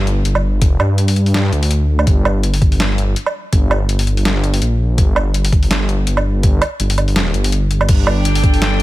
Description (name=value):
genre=half-time drum and bass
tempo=165 BPM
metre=4/4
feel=swing 56% on 16ths, half-time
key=G minor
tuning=A4 = 440 Hz
part: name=dark detuned saw bass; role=bass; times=0.0-8.8 s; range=G1 to G2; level=-15 LUFS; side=equal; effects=tube saturation
part: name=boom bap sampler-style drum kit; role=drums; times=0.1-8.8 s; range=crash cymbal, hi-hat, snare drum, woodblock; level=-20 LUFS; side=right 1 dB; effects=small room ambience
part: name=electronic kick drum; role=drums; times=0.6-8.5 s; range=none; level=-13 LUFS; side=equal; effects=small room ambience
part: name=warm studio cello section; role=sustained chords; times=7.9-8.8 s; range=G3 to G5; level=-19 LUFS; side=equal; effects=sidechain pumping
room=little or no reverb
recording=none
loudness=-13 LUFS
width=side -16 dB against mid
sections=0.0-8.8 A section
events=kick drops out 7.2-7.9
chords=0.0 G5